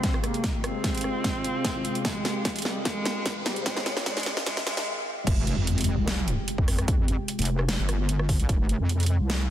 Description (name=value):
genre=heavy wobble dubstep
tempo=149 BPM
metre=4/4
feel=half-time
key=F minor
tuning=A4 = 440 Hz
part: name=rich cello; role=melody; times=0.0-4.9 s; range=G3 to C4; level=-32 LUFS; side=equal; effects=low-pass filter, dub echo
part: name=lush unison pad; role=sustained chords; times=0.0-9.5 s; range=C3 to C5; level=-35 LUFS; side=left 1 dB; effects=chorus, sidechain pumping
part: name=dubstep drum kit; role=drums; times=0.0-9.4 s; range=crash cymbal, hi-hat, rim click, snare drum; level=-30 LUFS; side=right 1 dB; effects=none
part: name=electronic kick drum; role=drums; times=0.0-8.6 s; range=none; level=-27 LUFS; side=equal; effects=none
part: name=riser and impact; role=sound effects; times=1.8-6.9 s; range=none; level=-35 LUFS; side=equal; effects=none
part: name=warbly tape-like pad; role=texture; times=0.0-4.9 s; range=F4 to Eb5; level=-44 LUFS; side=right 3 dB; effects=none
part: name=wobble bass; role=bass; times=5.3-9.5 s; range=F1 to F2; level=-25 LUFS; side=equal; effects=chorus, overdrive
room=light reverb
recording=dense, heavily limited modern master, high-pass filter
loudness=-24 LUFS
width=side -12 dB against mid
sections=0.0-5.3 A section; 5.3-9.5 B section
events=build-up 0.0-5.3; drum fill 0.0-4.9; filter sweep on cello 0.0-5.3; filter sweep 0.0-5.3; riser 1.8-4.9; break 4.9-5.3; drop 5.3-9.5; impact 5.3-6.9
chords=0.0 Fmadd9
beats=0.04 | 0.44 0.84 1.24 1.65 | 2.05 2.45 2.85 3.26 | 3.66 4.06 4.46 4.87 | 5.27 5.67 6.08 6.48 | 6.88 7.28 7.69 8.09 | 8.49 8.89 9.30